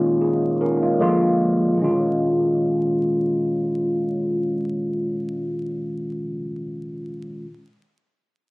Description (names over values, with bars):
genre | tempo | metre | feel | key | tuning
R&B | 76 BPM | 4/4 | swing 54% on 16ths | unclear | A4 = 440 Hz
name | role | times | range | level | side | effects
overdriven tine electric piano | solo | 0.0-7.5 s | Bb2 to Bb4 | -20 LUFS | equal | phaser
room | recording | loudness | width
wet studio reverb, RT60 0.5 s | recorded on a phone in the room, club reverb, vinyl crackle | -19 LUFS | side -24 dB against mid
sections
0.0-1.8 A section; 1.8-4.9 B section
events
none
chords
0.0 Bbm7; 1.0 Bb7; 1.8 Ebsus2